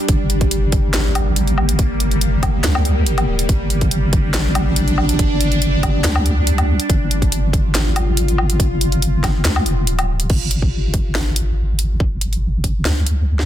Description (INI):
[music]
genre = deep dubstep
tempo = 141 BPM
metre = 4/4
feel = half-time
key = G phrygian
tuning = A4 = 440 Hz
[part]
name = bowed-like drone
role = sustained chords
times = 0.0-10.3 s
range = G3 to F4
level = -23 LUFS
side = equal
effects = built-in reverb, phaser
[part]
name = deep soft wobble bass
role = bass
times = 0.1-13.5 s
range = D1 to D2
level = -17 LUFS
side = equal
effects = chorus
[part]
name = electronic kick drum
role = drums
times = 0.1-12.7 s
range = none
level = -17 LUFS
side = equal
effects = none
[part]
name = garage drum kit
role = drums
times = 0.1-13.5 s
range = crash cymbal, handclaps, hi-hat, snare drum, woodblock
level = -22 LUFS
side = equal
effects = none
[sound]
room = digital ambience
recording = dense, heavily limited modern master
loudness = -15 LUFS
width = side -11 dB against mid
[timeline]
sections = 0.0-10.3 A section; 10.3-13.5 B section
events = drop 0.0-10.3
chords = 0.0 Gm; 10.3 G5